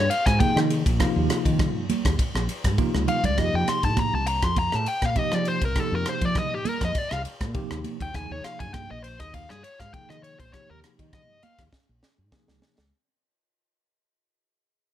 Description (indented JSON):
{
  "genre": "electric jazz fusion",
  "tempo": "101 BPM",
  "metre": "4/4",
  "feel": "swing 53% on 16ths",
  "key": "unclear",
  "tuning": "A4 = 440 Hz",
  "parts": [
    { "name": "dark smooth lead guitar", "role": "melody", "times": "0.0-11.6 s", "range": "G4 to C6", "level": "-27 LUFS", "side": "left 2 dB", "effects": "overdrive" },
    { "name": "woody fretless electric bass", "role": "bass", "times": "0.0-12.9 s", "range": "Bb1 to F3", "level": "-27 LUFS", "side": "equal", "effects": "lush chorus" },
    { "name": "crisp fusion drum kit", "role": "drums", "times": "0.1-12.9 s", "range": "kick drum, ride cymbal, rim click, snare drum", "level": "-27 LUFS", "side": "equal", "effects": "none" },
    { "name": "bell-like tine electric piano", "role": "accompaniment", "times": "0.4-12.7 s", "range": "C3 to Ab4", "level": "-29 LUFS", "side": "right 2 dB", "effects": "medium stereo tremolo" },
    { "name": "congas", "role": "percussion", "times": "0.4-12.8 s", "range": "none", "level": "-32 LUFS", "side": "right 8 dB", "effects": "none" }
  ],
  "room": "light reverb",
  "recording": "none",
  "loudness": "-22 LUFS",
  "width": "side -11 dB against mid",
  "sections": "0.0-12.9 A section",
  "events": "fade-out 0.0-12.9; lead electric guitar solo 0.0-12.9; drum fill 2.9-3.4, 11.7-12.9",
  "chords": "0.0 Ebsus4; 3.4 F9sus4; 8.1 Ebsus4",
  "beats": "0.40 | 0.99 1.59 2.18 2.78 | 3.37 3.97 4.56 5.16 | 5.75 6.35 6.95 7.54 | 8.14 8.74 9.33 9.93 | 10.53 11.12 11.72 12.32"
}